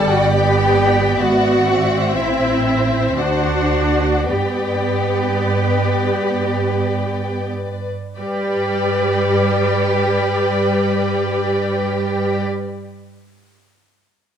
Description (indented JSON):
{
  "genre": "classical, slow romantic movement for string orchestra",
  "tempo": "43-67 BPM",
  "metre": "3/4",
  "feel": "rubato",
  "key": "G major",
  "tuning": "A4 = 444 Hz",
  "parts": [
    { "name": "dark studio violin section", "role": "melody", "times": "0.0-12.4 s", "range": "E5 to G5", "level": "-28 LUFS", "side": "left 5 dB", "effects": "none" },
    { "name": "rich studio violin section", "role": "second line", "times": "0.0-12.4 s", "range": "B4 to G5", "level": "-22 LUFS", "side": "left 3 dB", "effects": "none" },
    { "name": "clear studio viola section", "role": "accompaniment", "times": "0.0-12.4 s", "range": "G3 to G4", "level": "-22 LUFS", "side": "right 1 dB", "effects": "none" },
    { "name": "dark studio double bass section", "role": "bass", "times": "0.0-12.4 s", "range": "G1 to G2", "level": "-22 LUFS", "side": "right 4 dB", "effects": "none" },
    { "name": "rich studio cello section", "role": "bass", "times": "0.0-12.4 s", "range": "E4 to G4", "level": "-21 LUFS", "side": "equal", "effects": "none" }
  ],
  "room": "moderate scoring stage reverb, RT60 1.4 s",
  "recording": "none",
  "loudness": "-15 LUFS",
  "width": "side -8 dB against mid",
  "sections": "0.0-8.2 A section; 8.2-12.1 B section",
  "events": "slowing down 0.0-8.2",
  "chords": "0.0 G; 1.2 E7/G#; 2.1 Am; 3.2 D7; 4.3 G"
}